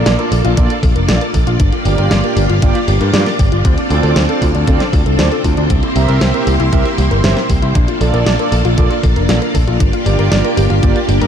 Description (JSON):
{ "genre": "synthwave", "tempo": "117 BPM", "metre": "4/4", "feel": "straight", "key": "unclear", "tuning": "A4 = 443 Hz", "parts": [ { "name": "string machine, full ensemble", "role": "sustained chords", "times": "0.0-11.3 s", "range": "Bb3 to D5", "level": "-18 LUFS", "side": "equal", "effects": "ensemble chorus, sidechain pumping" }, { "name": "mellow synth brass", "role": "stabs", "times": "0.0-11.0 s", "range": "Bb3 to E5", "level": "-21 LUFS", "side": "right 5 dB", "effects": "chorus, digital delay" }, { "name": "modern bright picked electric bass", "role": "bass", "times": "0.0-11.3 s", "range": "F1 to G2", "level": "-14 LUFS", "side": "equal", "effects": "none" }, { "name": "warbly dusty pluck", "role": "arpeggios", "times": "0.1-11.3 s", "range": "C4 to D5", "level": "-21 LUFS", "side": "left 2 dB", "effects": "chorus, digital delay" }, { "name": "pop drum kit", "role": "drums", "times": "0.1-11.3 s", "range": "hi-hat, snare drum", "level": "-20 LUFS", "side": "left 1 dB", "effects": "studio reverb" }, { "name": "electronic kick drum", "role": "drums", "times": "0.6-10.9 s", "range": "none", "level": "-14 LUFS", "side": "equal", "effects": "studio reverb" } ], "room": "light reverb, digital ambience", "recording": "dark, warm production", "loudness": "-11 LUFS", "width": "side -8 dB against mid", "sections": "0.0-11.3 A section", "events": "none", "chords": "0.0 Bbmaj7; 1.6 Gm7; 3.6 Dm7; 5.7 C7; 7.8 Bbmaj7; 9.8 Gm7" }